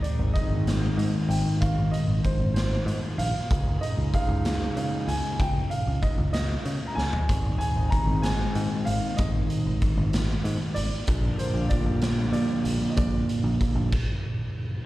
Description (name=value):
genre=indie rock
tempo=63 BPM (dotted quarters)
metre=6/8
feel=straight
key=unclear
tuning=A4 = 442 Hz
part: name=warm upright piano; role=melody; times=0.0-14.5 s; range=C5 to Bb5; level=-34 LUFS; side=right 1 dB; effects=slapback echo, plate reverb
part: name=crunchy overdriven guitar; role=riff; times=0.0-13.9 s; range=Ab2 to Eb4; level=-31 LUFS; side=right 4 dB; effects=wide subtle chorus, slapback echo
part: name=twelve-string electric guitar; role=riff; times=0.0-13.9 s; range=Ab2 to Bb4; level=-32 LUFS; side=left 4 dB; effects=spring reverb
part: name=raw garage drum kit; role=drums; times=0.0-14.1 s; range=crash cymbal, hi-hat, kick drum, snare drum, toms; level=-27 LUFS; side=equal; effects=none
part: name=picked electric bass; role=bass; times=0.2-13.9 s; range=Ab1 to Db3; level=-28 LUFS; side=equal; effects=none
room=light reverb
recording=live gig heard through the venue's PA, recital hall reverb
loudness=-23 LUFS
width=side -16 dB against mid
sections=0.0-14.9 A section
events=drum fill 7.0-7.3; stop 13.9-14.9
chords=0.0 Ab; 3.5 Dbsus2; 7.3 Ab; 11.1 Bb6